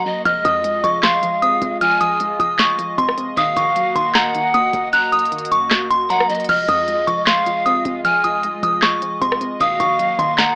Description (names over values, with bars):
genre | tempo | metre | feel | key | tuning
hip hop, trap | 154 BPM | 4/4 | half-time | F phrygian | A4 = 439 Hz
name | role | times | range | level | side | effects
delicate synth tine bell | melody | 0.0-10.6 s | Bb5 to Gb6 | -20 LUFS | equal | chorus
breathy polished pan flute | second line | 0.0-10.6 s | Eb5 to Bb5 | -23 LUFS | equal | tape echo
warbly dusty pluck | accompaniment | 0.0-10.6 s | Gb2 to C4 | -33 LUFS | equal | chorus
warm analog pad | sustained chords | 0.0-10.6 s | Ab3 to Eb5 | -31 LUFS | equal | chorus
short 808-style bass | bass | 0.3-10.6 s | Eb1 to F2 | -34 LUFS | equal | none
trap drum kit | drums | 0.3-10.5 s | crash cymbal, handclaps, hi-hat, rim click, snare drum | -22 LUFS | equal | overdrive
room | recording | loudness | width
little or no reverb | dry, gritty hardware recording, cassette tape, AM radio sound | -17 LUFS | mono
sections
0.0-6.5 A section; 6.5-10.6 A section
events
break 0.0; kick muted 4.9-6.5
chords
0.3 Fm7; 3.4 Ebm; 4.9 Gb6; 6.5 Fm7; 9.6 Ebm